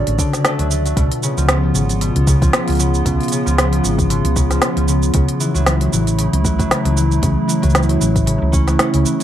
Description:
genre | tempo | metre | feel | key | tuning
folktronica | 115 BPM | 4/4 | swing 56% on 16ths | unclear | A4 = 437 Hz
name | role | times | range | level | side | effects
warbly tape-like pad | sustained chords | 0.0-9.2 s | C#3 to D5 | -22 LUFS | right 2 dB | chorus, built-in reverb, vintage 12-bit sampler grit
concert harp | arpeggios | 0.0-9.2 s | B2 to C#4 | -19 LUFS | left 2 dB | tape echo
hollow-body short-scale fingered electric bass | bass | 0.1-9.0 s | G#1 to D2 | -18 LUFS | equal | none
organic electronic drum kit | drums | 0.1-9.2 s | hi-hat, shaker, snare drum | -20 LUFS | right 1 dB | none
electronic kick drum | drums | 0.2-8.7 s | none | -18 LUFS | equal | none
room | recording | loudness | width
light reverb | none | -14 LUFS | side -11 dB against mid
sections
0.0-9.2 A section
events
none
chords
0.0 Dmaj7; 1.0 C#7; 5.1 F#m7

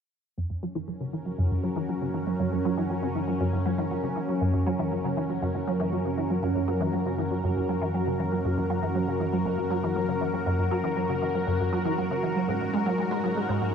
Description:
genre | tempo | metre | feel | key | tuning
ambient, sequencer-driven space music | 119 BPM | 4/4 | straight | unclear | A4 = 439 Hz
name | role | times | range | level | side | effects
lush unison pad | sustained chords | 0.4-13.7 s | G#3 to A#4 | -29 LUFS | equal | chorus, phaser
resonant blip pluck | riff | 0.4-13.7 s | F#2 to G#3 | -27 LUFS | equal | phaser, ensemble chorus, analog delay
analog drone | bass | 0.4-13.7 s | F#2 to G#2 | -36 LUFS | equal | chorus
room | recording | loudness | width
wet huge ambient reverb, RT60 8.4 s | dark, warm production | -25 LUFS | side -7 dB against mid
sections
0.4-4.4 A section; 4.4-13.7 B section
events
fade-in on synth drone 0.4-4.4; filter sweep on synth arpeggio sound 0.4-4.4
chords
0.4 F#; 12.5 G#7(no3)

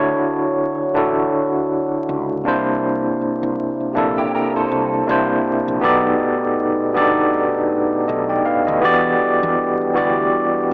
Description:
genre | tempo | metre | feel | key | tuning
R&B, neo-soul | 80 BPM | 4/4 | swing 57% on 16ths | unclear | A4 = 441 Hz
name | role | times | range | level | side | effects
overdriven tine electric piano | accompaniment | 0.0-10.7 s | B2 to G5 | -16 LUFS | equal | fast tremolo
dark French horn section | sustained chords | 0.0-10.7 s | C3 to C#5 | -26 LUFS | equal | none
mellow fretless electric bass | bass | 0.0-10.7 s | G1 to E2 | -29 LUFS | equal | none
electric guitar through a small old amp | second line | 4.2-5.1 s | E4 to C5 | -22 LUFS | right 1 dB | ensemble chorus
room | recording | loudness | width
moderate plate reverb, RT60 2.4 s | vinyl crackle, small speaker sound | -15 LUFS | side -33 dB against mid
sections
0.0-10.7 A section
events
none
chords
0.0 Dmaj9; 2.4 C7; 5.1 C9; 5.8 B7alt; 8.8 Em7

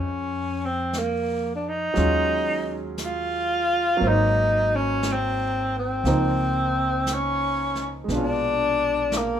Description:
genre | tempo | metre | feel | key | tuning
jazz ballad | 59 BPM | 4/4 | swing 66% on 8ths | Db major | A4 = 440 Hz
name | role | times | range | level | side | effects
breathy tenor saxophone | melody | 0.0-9.4 s | Bb3 to F4 | -23 LUFS | left 1 dB | none
clear baby grand piano | accompaniment | 0.0-9.4 s | Cb3 to C5 | -28 LUFS | right 2 dB | none
upright bass | bass | 0.0-9.4 s | Ab1 to F2 | -28 LUFS | equal | none
jazz brush drum kit | drums | 0.9-9.4 s | brushed snare drum, hi-hat, snare drum | -35 LUFS | right 1 dB | none
room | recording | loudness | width
light reverb | minimal, uncompressed stereo recording | -21 LUFS | side -9 dB against mid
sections
0.0-9.4 A section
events
none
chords
0.0 Bbm9; 2.0 Ebm11; 4.0 Ab7; 6.0 Dbmaj13; 8.1 Bb7b9

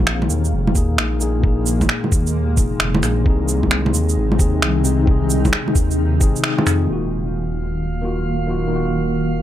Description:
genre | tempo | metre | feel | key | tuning
future garage | 132 BPM | 4/4 | swing 65% on 16ths | Eb dorian | A4 = 441 Hz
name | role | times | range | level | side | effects
tine electric piano | accompaniment | 0.0-9.4 s | Bb2 to Ab4 | -23 LUFS | left 2 dB | sidechain pumping, low-pass filter, analog delay
granular cloud pad | sustained chords | 0.0-9.4 s | C3 to F5 | -25 LUFS | left 1 dB | built-in reverb, vintage 12-bit sampler grit, sidechain pumping
dark detuned saw bass | bass | 0.0-9.4 s | Eb1 to F2 | -20 LUFS | equal | sidechain pumping
electronic finger snaps, bongos and shaker | drums | 0.1-6.8 s | none | -20 LUFS | right 2 dB | none
electronic kick drum | drums | 0.8-6.3 s | none | -18 LUFS | equal | none
drifting glass-harmonics texture | texture | 7.3-9.4 s | F5 | -31 LUFS | right 3 dB | chorus, built-in reverb
room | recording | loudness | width
light reverb | none | -16 LUFS | side -12 dB against mid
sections
0.0-6.9 A section; 6.9-9.4 B section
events
band accent 6.4; filter sweep on ambient pad 6.9-9.4; filter sweep on tine electric piano 6.9-9.4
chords
0.0 Bb7sus4; 3.3 Ab; 6.9 Ebmadd9

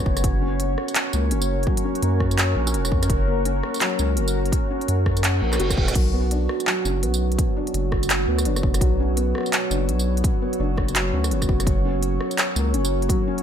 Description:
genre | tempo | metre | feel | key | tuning
half-time drum and bass | 168 BPM | 4/4 | swing 60% on 16ths, half-time | unclear | A4 = 439 Hz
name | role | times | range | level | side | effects
deep dark ambient pad | sustained chords | 0.0-13.4 s | B3 to C#5 | -27 LUFS | right 1 dB | chorus, built-in reverb, sidechain pumping
felt-muted upright piano | arpeggios | 0.0-13.4 s | F#3 to F#4 | -29 LUFS | left 4 dB | ping-pong delay
saturated sub bass | bass | 0.0-13.1 s | E1 to F#2 | -23 LUFS | equal | none
metallic inharmonic drone | texture | 0.0-13.4 s | F#3 to F#4 | -32 LUFS | right 2 dB | chorus, built-in reverb
electronic kick drum | drums | 0.1-13.2 s | none | -23 LUFS | equal | none
industrial drum kit | drums | 0.2-13.4 s | crash cymbal, handclaps, hi-hat, rim click, tambourine | -26 LUFS | right 1 dB | none
reverse cymbal | sound effects | 5.4-6.0 s | none | -30 LUFS | right 4 dB | none
room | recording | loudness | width
light reverb, digital ambience | none | -19 LUFS | side -9 dB against mid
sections
0.0-13.4 A section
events
reverse cymbal 5.4-6.0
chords
0.2 F#; 6.0 Bm; 11.7 F#

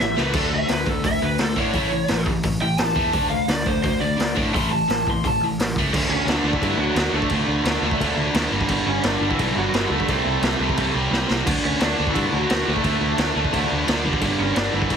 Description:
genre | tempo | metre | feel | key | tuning
punk rock | 173 BPM | 4/4 | straight | D major | A4 = 440 Hz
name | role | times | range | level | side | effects
lead guitar through a small cranked amp | melody | 0.0-15.0 s | E3 to C6 | -25 LUFS | right 1 dB | overdrive
distorted electric guitar | riff | 0.0-15.0 s | G2 to D4 | -23 LUFS | equal | distortion
picked electric bass | bass | 0.0-15.0 s | G1 to A2 | -27 LUFS | equal | none
raw garage drum kit | drums | 0.0-15.0 s | crash cymbal, hi-hat, kick drum, snare drum | -24 LUFS | equal | none
room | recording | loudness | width
light reverb | heavily compressed radio sound | -19 LUFS | side -7 dB against mid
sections
0.0-5.9 A section; 5.9-15.0 B section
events
drum fill 0.0-0.3, 11.1-11.5; lead electric guitar solo 0.0-5.9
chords
0.3 D5; 1.7 A; 3.1 D5; 4.5 A5; 5.9 D; 8.5 G5; 10.1 C5; 11.5 D; 14.0 G5

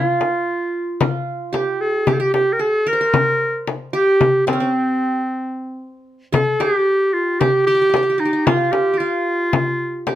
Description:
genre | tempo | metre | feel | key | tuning
Turkish makam ensemble | 112 BPM | 4/4 | straight | C makam hicaz | A4 = 437 Hz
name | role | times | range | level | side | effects
clear clarinet | melody | 0.0-10.2 s | C4 to Bb4 | -18 LUFS | equal | none
qanun | second line | 0.0-10.2 s | C4 to C5 | -24 LUFS | right 3 dB | none
frame drum | percussion | 0.2-10.2 s | none | -20 LUFS | left 5 dB | none
room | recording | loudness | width
moderate studio reverb, RT60 0.6 s | none | -16 LUFS | side -12 dB against mid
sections
0.0-6.3 A section; 6.3-10.2 B section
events
stop 5.3-6.3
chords
none

